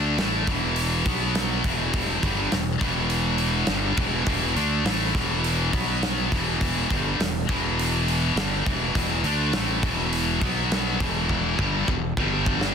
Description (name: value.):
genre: hard rock.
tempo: 102 BPM.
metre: 4/4.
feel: straight.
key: E minor.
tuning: A4 = 439 Hz.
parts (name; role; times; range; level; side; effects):
high-gain distorted guitar; riff; 0.0-12.7 s; E2 to D4; -28 LUFS; right 14 dB; distortion.
scooped high-gain guitar; riff; 0.0-12.7 s; E2 to D4; -26 LUFS; left 14 dB; distortion.
fuzz fingered electric bass; bass; 0.0-12.7 s; E1 to D2; -28 LUFS; equal; overdrive.
gated 80s drum kit; drums; 0.2-12.7 s; hi-hat, kick drum, snare drum; -28 LUFS; right 1 dB; soft clipping on kick.
room: small room ambience.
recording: dense, heavily limited modern master.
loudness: -21 LUFS.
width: side -7 dB against mid.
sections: 0.0-12.7 A section.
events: drum fill 11.3-12.7.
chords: 0.0 E5; 1.1 B5; 1.6 Em; 5.7 B5; 6.3 Em; 10.4 B5; 11.0 Em; 12.2 G5.